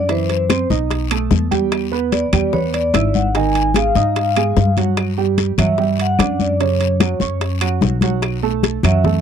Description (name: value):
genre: Afro-Cuban jazz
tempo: 148 BPM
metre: 4/4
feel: straight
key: unclear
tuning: A4 = 435 Hz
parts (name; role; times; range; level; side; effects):
- vibraphone with medium mallets; melody; 0.0-9.2 s; C5 to G#5; -20 LUFS; left 2 dB; none
- warm baby grand piano; accompaniment; 0.0-9.2 s; C#3 to E6; -21 LUFS; right 16 dB; none
- upright bass; bass; 0.0-9.2 s; G#1 to G#2; -19 LUFS; left 1 dB; none
- bongos; percussion; 0.1-9.2 s; none; -24 LUFS; left 13 dB; none
- congas; percussion; 0.1-9.2 s; none; -20 LUFS; left 4 dB; none
- guiro; percussion; 0.1-9.2 s; none; -32 LUFS; left 23 dB; none
- timbales; percussion; 0.1-9.0 s; none; -26 LUFS; right 11 dB; none
- claves; percussion; 0.5-9.0 s; none; -29 LUFS; left 24 dB; none
room: light reverb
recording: dry, close 1970s-style studio recording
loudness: -15 LUFS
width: side -8 dB against mid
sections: 0.0-9.2 A section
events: none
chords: 0.1 Cmaj7#11; 0.9 B7b13; 1.7 Em7; 3.3 G#5; 5.0 G5; 6.6 F#5; 8.2 B7(no3)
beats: | 0.09 0.50 0.90 1.31 | 1.72 2.12 2.53 2.94 | 3.34 3.75 4.16 4.56 | 4.97 5.38 5.78 6.19 | 6.60 7.00 7.41 7.82 | 8.23 8.63 9.04